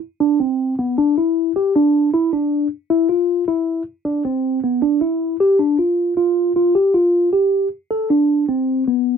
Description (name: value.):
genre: progressive instrumental, progressive.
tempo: 156 BPM.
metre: 5/4.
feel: straight.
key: D dorian.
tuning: A4 = 440 Hz.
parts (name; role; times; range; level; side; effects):
mellow tine electric piano; solo; 0.2-9.2 s; B3 to A4; -15 LUFS; equal; phaser.
room: light reverb.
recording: dry, close 1970s-style studio recording.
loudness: -15 LUFS.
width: side -7 dB against mid.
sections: 0.0-5.6 A section; 5.6-9.2 B section.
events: none.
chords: none.